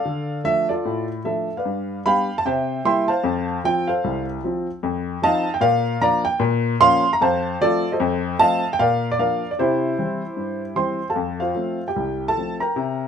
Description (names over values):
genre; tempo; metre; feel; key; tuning
jazz, stride piano; 151 BPM; 4/4; swing 60% on 8ths; F major; A4 = 442 Hz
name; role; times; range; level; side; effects
warm upright piano; solo; 0.0-13.1 s; C2 to C6; -19 LUFS; equal; none
room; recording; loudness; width
moderate studio reverb, RT60 0.5 s; minimal, uncompressed stereo recording; -19 LUFS; side -7 dB against mid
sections
0.0-11.2 A section; 11.2-13.1 B section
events
none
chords
0.1 Dm; 1.6 G7; 2.4 C7; 3.2 F; 4.8 F5; 5.6 Bb; 6.4 Bbm; 7.2 F; 8.0 F7; 8.8 Bb; 9.6 C; 11.2 F